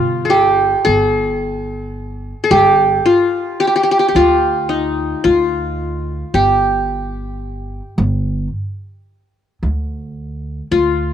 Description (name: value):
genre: Arabic maqam ensemble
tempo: 110 BPM (eighths)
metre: 10/8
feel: straight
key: G maqam saba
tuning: A4 = 441 Hz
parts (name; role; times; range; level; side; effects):
- qanun; melody; 0.0-11.1 s; Eb4 to Ab4+50c; -13 LUFS; equal; none
- upright bass; bass; 0.0-11.1 s; G1 to D2; -21 LUFS; right 1 dB; none
- darbuka; percussion; 0.3-0.5 s; none; -24 LUFS; right 9 dB; none
room: light reverb, studio reverb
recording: 1960s-style stereo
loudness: -13 LUFS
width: side -9 dB against mid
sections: 0.9-11.1 A section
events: none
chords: none